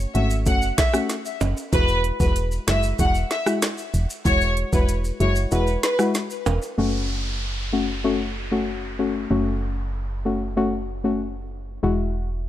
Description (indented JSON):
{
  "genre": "dancehall",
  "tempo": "95 BPM",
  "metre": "4/4",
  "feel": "straight",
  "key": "F# minor",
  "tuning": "A4 = 439 Hz",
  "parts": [
    { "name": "deep mellow chord stab", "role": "accompaniment", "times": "0.0-12.4 s", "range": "G#3 to F#4", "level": "-25 LUFS", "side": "left 3 dB", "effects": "chorus, sidechain pumping" },
    { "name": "solid FM bass", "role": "bass", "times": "0.0-12.5 s", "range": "E1 to G#1", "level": "-25 LUFS", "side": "right 1 dB", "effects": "none" },
    { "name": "warm studio violin section", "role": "melody", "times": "0.1-5.9 s", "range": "B4 to F#5", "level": "-25 LUFS", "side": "equal", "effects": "ping-pong delay" },
    { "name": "island pop drum kit", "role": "drums", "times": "0.1-6.6 s", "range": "hi-hat, kick drum, rim click, snare drum", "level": "-23 LUFS", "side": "right 1 dB", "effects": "none" },
    { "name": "maracas and timbales", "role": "percussion", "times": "0.3-6.8 s", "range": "none", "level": "-32 LUFS", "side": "right 4 dB", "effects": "none" },
    { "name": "downlifter", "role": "sound effects", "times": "6.8-11.8 s", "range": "none", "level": "-34 LUFS", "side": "right 1 dB", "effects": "none" }
  ],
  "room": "digital ambience",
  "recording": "none",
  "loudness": "-20 LUFS",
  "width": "side -12 dB against mid",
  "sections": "0.0-6.8 A section; 6.8-12.5 B section",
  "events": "kick muted 5.5-6.8",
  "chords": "0.0 F#m; 1.7 Eadd9; 6.8 F#m; 11.8 Eadd9"
}